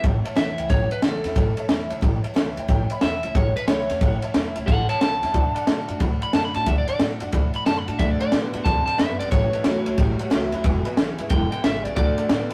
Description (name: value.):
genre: rockabilly.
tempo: 181 BPM.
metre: 4/4.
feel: swing 64% on 8ths.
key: A mixolydian.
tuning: A4 = 440 Hz.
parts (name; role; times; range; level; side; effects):
electric guitar at the edge of break-up; melody; 0.0-12.5 s; A4 to B5; -28 LUFS; equal; none.
honky-tonk upright piano; accompaniment; 0.0-12.5 s; B4 to B5; -38 LUFS; equal; none.
picked steel-string acoustic guitar; accompaniment; 0.0-12.5 s; E2 to F#4; -35 LUFS; equal; none.
electric guitar through a small old amp; riff; 0.0, 8.0-12.5 s; E2 to C4; -31 LUFS; equal; spring reverb.
upright bass; bass; 0.0-12.5 s; E1 to A2; -29 LUFS; equal; none.
compact cocktail drum kit; drums; 0.0-12.5 s; kick drum, ride cymbal, snare drum; -25 LUFS; equal; none.
room: light reverb.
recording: rough rehearsal-room recording, warm saturation.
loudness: -22 LUFS.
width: mono.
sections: 0.0-12.5 A section.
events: clean electric guitar solo 0.0-12.5.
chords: 0.0 A; 5.3 D; 9.3 A; 10.6 E; 12.0 D.